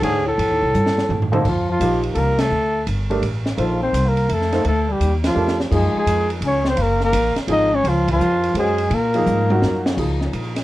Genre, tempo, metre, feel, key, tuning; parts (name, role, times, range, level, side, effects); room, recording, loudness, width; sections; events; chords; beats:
modal jazz; 169 BPM; 3/4; swing 65% on 8ths; A4 = 440 Hz
mellow trumpet; melody; 0.0-9.9 s; F4 to Eb5; -20 LUFS; right 1 dB
clear bass clarinet; second line; 0.0-9.9 s; G#2 to Eb4; -24 LUFS; left 4 dB
warm baby grand piano; accompaniment; 0.0-10.6 s; D3 to C#5; -24 LUFS; equal
upright bass; bass; 0.0-10.6 s; Gb1 to Bb2; -22 LUFS; equal
open jazz drum kit; drums; 0.0-10.6 s; crash cymbal, hi-hat, kick drum, ride cymbal, snare drum, toms; -26 LUFS; right 1 dB
light reverb; worn, warbling old tape, cassette tape, warbly pitch drift; -16 LUFS; side -16 dB against mid
0.0-1.4 A section; 1.4-10.0 B section
drum fill 0.7-1.4, 5.4-5.7, 9.3-10.0; band accent 2.3, 5.2, 8.0
0.4 F7 (rootless); 1.4 Bbmaj9; 5.7 Gbmaj9; 10.0 Dbadd9
0.03 | 0.39 0.74 1.09 | 1.45 1.80 2.16 | 2.51 2.87 3.22 | 3.58 3.94 4.29 | 4.65 5.00 5.36 | 5.71 6.07 6.42 | 6.78 7.13 7.49 | 7.84 8.20 8.55 | 8.91 9.27 9.62 | 9.97 10.33